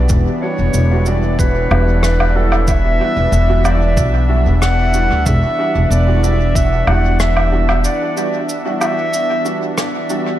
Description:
ambient dub; 93 BPM; 4/4; straight; E minor; A4 = 440 Hz
warm analog pad; sustained chords; 0.0-10.4 s; E3 to F#5; -21 LUFS; left 1 dB; chorus
upright bass; bass; 0.0-7.8 s; E1 to D2; -14 LUFS; equal
cabasa, woodblock and rim click; drums; 0.1-10.2 s; -23 LUFS; right 1 dB; dub echo
electronic kick drum; drums; 0.1-6.7 s; -17 LUFS; equal
clear clarinet; melody; 0.4-9.7 s; A4 to F#5; -20 LUFS; equal; vintage 12-bit sampler grit, dub echo
warm upright piano; stabs; 0.4-10.3 s; G3 to F#4; -24 LUFS; right 2 dB; ensemble chorus, dub echo
light reverb, small room ambience; -13 LUFS; side -12 dB against mid
0.0-10.4 A section
break 7.8-10.4
0.0 Em9

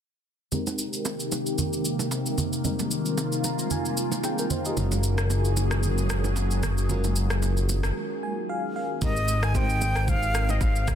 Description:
amapiano; 113 BPM; 4/4; swing 55% on 16ths; Ab major; A4 = 440 Hz
FM electric piano with tremolo; accompaniment; 0.5-10.9 s; G3 to Bb5; -32 LUFS; left 2 dB; phaser, low-pass filter
lush unison pad; sustained chords; 0.8-9.0 s; C3 to Ab4; -30 LUFS; equal; chorus, phaser, sidechain pumping, low-pass filter
smooth R&B drum kit; drums; 0.5-10.9 s; kick drum, rim click, shaker; -30 LUFS; equal
congas and bongos; percussion; 0.5-10.9 s; -33 LUFS; right 6 dB
fat analog bass; bass; 4.8-10.9 s; Gb1 to Ab1; -25 LUFS; equal
breathy bright jazz flute; melody; 9.0-10.9 s; Eb5 to Ab5; -28 LUFS; equal; digital delay
light reverb; dense, heavily limited modern master; -23 LUFS; side -9 dB against mid
0.5-9.0 A section; 9.0-10.9 B section
filter sweep 0.5-9.0; FM electric piano fill 3.2-4.8, 8.0-9.0; break 8.0-9.0
0.5 Abmaj9; 4.8 Gbmaj9; 9.0 Abmaj9

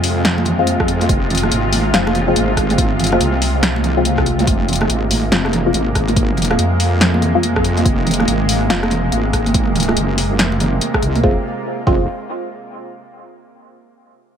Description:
deep dubstep; 142 BPM; 4/4; swing 61% on 16ths, half-time; F minor; A4 = 443 Hz
bowed-like drone; sustained chords; 0.0-11.4 s; C3 to F4; -21 LUFS; equal; built-in reverb, vintage 12-bit sampler grit
wobble bass; bass; 0.0-12.1 s; F1 to F2; -19 LUFS; equal; chorus, tube saturation
deep house drum kit; drums; 0.0-11.2 s; hi-hat, rim click, snare drum; -19 LUFS; left 1 dB; overdrive
congas; percussion; 0.4-11.2 s; -22 LUFS; right 3 dB; dub echo
filtered dub chord stab; stabs; 0.6-12.0 s; Ab3 to F4; -22 LUFS; left 2 dB; phaser, analog chorus, cassette tape, dub echo
electronic kick drum; drums; 0.8-12.0 s; -18 LUFS; equal; overdrive
moderate spring reverb, RT60 2.0 s; -14 LUFS; side -8 dB against mid
0.0-11.2 A section; 11.2-12.9 B section
0.0 Fm

